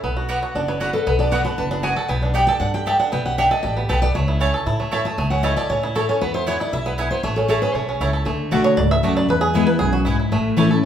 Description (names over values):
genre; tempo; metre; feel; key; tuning
bluegrass; 234 BPM; 4/4; straight; A major; A4 = 443 Hz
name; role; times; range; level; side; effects
bluegrass banjo; melody; 0.0-10.9 s; A3 to E5; -23 LUFS; right 2 dB; none
upright bass; bass; 0.0-10.7 s; F#1 to A2; -24 LUFS; equal; none
mandolin; stabs; 0.3-10.7 s; A3 to A5; -24 LUFS; right 2 dB; none
picked steel-string acoustic guitar; accompaniment; 0.6-10.8 s; E2 to B5; -22 LUFS; left 2 dB; none
room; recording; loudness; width
wet large studio reverb, RT60 1.1 s; band playing live in one room; -17 LUFS; side -9 dB against mid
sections
0.0-8.3 A section; 8.3-10.9 A section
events
steel-string acoustic guitar solo 0.0-8.3; five-string banjo solo 8.3-10.9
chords
0.0 Bm; 2.1 G/B; 4.2 A/C#; 6.2 E; 7.2 A; 8.3 D; 9.3 E; 10.3 A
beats
| 0.03 0.29 0.55 0.81 | 1.06 1.32 1.58 1.84 | 2.09 2.35 2.61 2.87 | 3.12 3.38 3.64 3.90 | 4.15 4.41 4.67 4.92 | 5.18 5.44 5.69 5.95 | 6.21 6.46 6.72 6.98 | 7.23 7.49 7.75 8.00 | 8.26 8.52 8.78 9.03 | 9.29 9.54 9.80 10.06 | 10.32 10.57 10.83